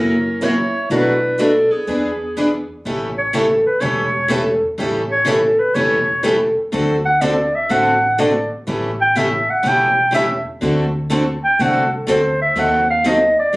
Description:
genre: acoustic string swing (jazz manouche)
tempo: 123 BPM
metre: 4/4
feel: swing 65% on 8ths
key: A mixolydian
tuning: A4 = 444 Hz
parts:
  - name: breathy clarinet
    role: melody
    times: 0.0-13.6 s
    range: G#4 to G5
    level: -16 LUFS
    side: equal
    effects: none
  - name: picked steel-string acoustic guitar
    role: second line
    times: 0.0-2.7 s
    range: B3 to E4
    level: -25 LUFS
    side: right 1 dB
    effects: none
  - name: picked steel-string acoustic guitar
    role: accompaniment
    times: 0.0-13.6 s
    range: B2 to A4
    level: -21 LUFS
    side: left 1 dB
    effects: none
  - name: picked steel-string acoustic guitar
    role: accompaniment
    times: 0.0-13.6 s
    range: B2 to B4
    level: -23 LUFS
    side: right 1 dB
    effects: none
  - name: upright bass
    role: bass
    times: 0.0-13.6 s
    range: E1 to E2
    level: -26 LUFS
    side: equal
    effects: none
room: moderate club reverb, RT60 0.7 s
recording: recorded on a phone in the room, club reverb, compression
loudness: -14 LUFS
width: side -22 dB against mid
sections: 0.0-2.8 A section; 2.8-13.6 B section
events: clarinet solo 2.8-13.6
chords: 0.0 F#7; 0.9 Bm7; 1.9 E7; 2.8 A7; 6.7 D7; 8.7 A7; 10.6 D7; 12.6 D#dim7

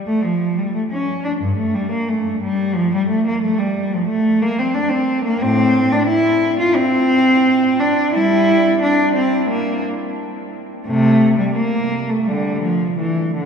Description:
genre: classical, baroque-style suite movement for unaccompanied cello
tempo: 89 BPM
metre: 4/4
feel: rubato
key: unclear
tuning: A4 = 440 Hz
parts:
  - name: warm cello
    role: solo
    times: 0.1-13.5 s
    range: G2 to F4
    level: -15 LUFS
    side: equal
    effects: none
room: wet cathedral reverb, RT60 6.5 s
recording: heard from further back in the room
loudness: -15 LUFS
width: side -6 dB against mid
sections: 0.0-13.5 A section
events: none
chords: none

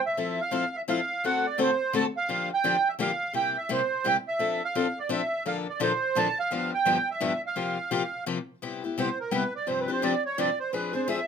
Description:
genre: jazz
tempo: 171 BPM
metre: 3/4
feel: swing 61% on 8ths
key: F major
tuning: A4 = 442 Hz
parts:
  - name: accordion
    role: melody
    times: 0.0-11.3 s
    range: Bb4 to A5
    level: -26 LUFS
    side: right 4 dB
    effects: light tremolo tuning
  - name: picked steel-string acoustic guitar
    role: accompaniment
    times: 0.2-11.2 s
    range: G2 to A4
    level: -28 LUFS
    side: left 6 dB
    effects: none
room: light reverb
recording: minimal, uncompressed stereo recording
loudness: -25 LUFS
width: side -7 dB against mid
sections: 0.2-8.6 A section; 8.6-11.3 B section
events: accordion solo 8.6-11.3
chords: 0.2 Fmaj7; 1.2 D7; 2.3 Gm7/D; 3.3 C7; 4.4 F6; 5.4 Bbmaj7; 6.5 G7; 7.6 C7sus4; 8.6 Cmaj7; 9.7 G7sus4; 10.7 Fm6

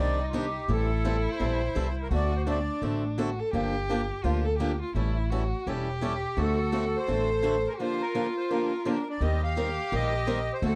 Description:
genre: acoustic string swing (jazz manouche)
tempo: 169 BPM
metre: 4/4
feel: swing 60% on 8ths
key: G minor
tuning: A4 = 441 Hz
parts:
  - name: accordion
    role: melody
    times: 0.0-2.8, 6.1-10.8 s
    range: F4 to F5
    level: -34 LUFS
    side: equal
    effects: light tremolo tuning, slapback echo
  - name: rich violin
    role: second line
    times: 0.0-10.8 s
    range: D4 to A4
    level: -34 LUFS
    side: equal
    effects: none
  - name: picked swing-style acoustic guitar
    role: accompaniment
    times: 0.0-10.8 s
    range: D3 to Bb4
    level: -34 LUFS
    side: equal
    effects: none
  - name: upright bass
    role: bass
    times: 0.0-10.8 s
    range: E1 to Eb2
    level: -31 LUFS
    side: equal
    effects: none
room: light reverb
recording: dark, warm production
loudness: -28 LUFS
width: mono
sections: 0.0-9.2 A section; 9.2-10.8 B section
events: break 7.8-9.2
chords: 0.0 Cmadd9; 0.7 Am7; 2.1 D7; 3.5 Gm7; 5.0 A7; 6.4 D7; 7.8 Gm7; 9.2 Eb6

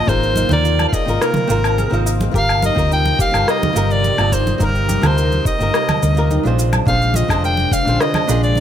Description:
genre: sunset chillout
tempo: 106 BPM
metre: 4/4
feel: straight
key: unclear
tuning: A4 = 440 Hz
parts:
  - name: clear soprano saxophone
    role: melody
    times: 0.0-8.6 s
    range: Bb4 to G5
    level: -20 LUFS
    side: left 1 dB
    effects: digital delay
  - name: flamenco guitar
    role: accompaniment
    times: 0.0-8.6 s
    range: C4 to Eb5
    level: -23 LUFS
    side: equal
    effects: auto-pan, digital delay
  - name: airy breathy pad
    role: sustained chords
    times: 0.0-8.6 s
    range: C3 to F4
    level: -25 LUFS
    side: right 1 dB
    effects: chorus, phaser
  - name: soft round pluck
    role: arpeggios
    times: 0.1-8.6 s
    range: D4 to Bb4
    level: -29 LUFS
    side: left 1 dB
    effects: chorus, digital delay
  - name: hollow-body short-scale fingered electric bass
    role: bass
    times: 0.1-8.6 s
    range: F1 to Eb2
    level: -18 LUFS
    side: equal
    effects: tube saturation
  - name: electronic kick drum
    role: drums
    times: 0.1-7.8 s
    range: none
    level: -21 LUFS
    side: equal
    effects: none
  - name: electronic shaker, woodblock and rim click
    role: drums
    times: 0.1-8.6 s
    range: none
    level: -23 LUFS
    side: equal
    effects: overdrive, gated reverb
  - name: congas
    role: percussion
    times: 0.4-8.6 s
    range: none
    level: -24 LUFS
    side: right 2 dB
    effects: none
room: light reverb, digital ambience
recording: bright 1980s-style digital production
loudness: -14 LUFS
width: side -10 dB against mid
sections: 0.0-8.6 A section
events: none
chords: 0.0 Ab69; 2.3 Eb6/G; 6.6 Bb9

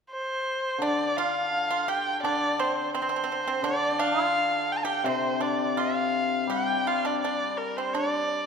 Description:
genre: chinese traditional, Chinese chamber ensemble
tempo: 84 BPM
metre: 2/4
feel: straight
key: unclear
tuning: A4 = 440 Hz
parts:
  - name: rich erhu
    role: melody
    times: 0.1-8.5 s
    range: Bb4 to Bb5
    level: -27 LUFS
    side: equal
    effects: none
  - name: pipa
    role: second line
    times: 0.8-8.5 s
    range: C4 to G4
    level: -30 LUFS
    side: right 4 dB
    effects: none
  - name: hammered dulcimer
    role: accompaniment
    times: 0.8-8.5 s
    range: C3 to G3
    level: -30 LUFS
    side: left 6 dB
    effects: none
room: moderate scoring stage reverb, RT60 2.0 s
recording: minimal, uncompressed stereo recording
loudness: -24 LUFS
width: side -6 dB against mid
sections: 0.8-8.5 A section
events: none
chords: none

